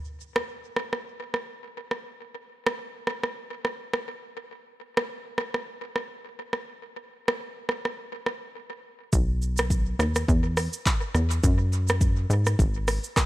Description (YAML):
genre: afrobeats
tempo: 104 BPM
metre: 4/4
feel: swing 58% on 16ths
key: B major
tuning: A4 = 440 Hz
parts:
  - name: afro-pop drum kit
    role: drums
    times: 0.4-13.3 s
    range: handclaps, hi-hat, kick drum, rim click, shaker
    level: -26 LUFS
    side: equal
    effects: tape echo
  - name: plucky analog bass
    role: bass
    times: 9.1-13.0 s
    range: G#1 to G#2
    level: -24 LUFS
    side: equal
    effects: none
room: little or no reverb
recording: echo-heavy mix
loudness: -25 LUFS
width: side -17 dB against mid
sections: 0.0-9.1 A section; 9.1-13.3 B section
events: break 8.6-9.1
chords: none